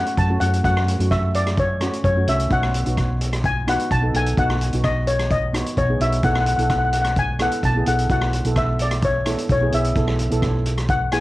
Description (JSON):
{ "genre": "calypso", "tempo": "129 BPM", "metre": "4/4", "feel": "straight", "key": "unclear", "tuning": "A4 = 439 Hz", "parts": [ { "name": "steel pan", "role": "melody", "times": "0.0-11.2 s", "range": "C#5 to A5", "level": "-22 LUFS", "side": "left 2 dB", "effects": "cassette tape, tape echo" }, { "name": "steel pan", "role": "accompaniment", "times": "0.0-11.2 s", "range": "A3 to A4", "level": "-26 LUFS", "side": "right 2 dB", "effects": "none" }, { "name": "hollow-body short-scale fingered electric bass", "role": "bass", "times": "0.0-11.2 s", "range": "B1 to F#2", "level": "-22 LUFS", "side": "equal", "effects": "none" }, { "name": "street-band drum kit", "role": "drums", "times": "0.1-11.2 s", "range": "hi-hat, kick drum, rim click", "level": "-25 LUFS", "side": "equal", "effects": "cassette tape" } ], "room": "light reverb", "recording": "home recording on cassette", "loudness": "-18 LUFS", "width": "side -17 dB against mid", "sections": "0.0-11.2 A section", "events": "none", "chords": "0.0 F#m; 2.5 B; 6.2 Esus4/B" }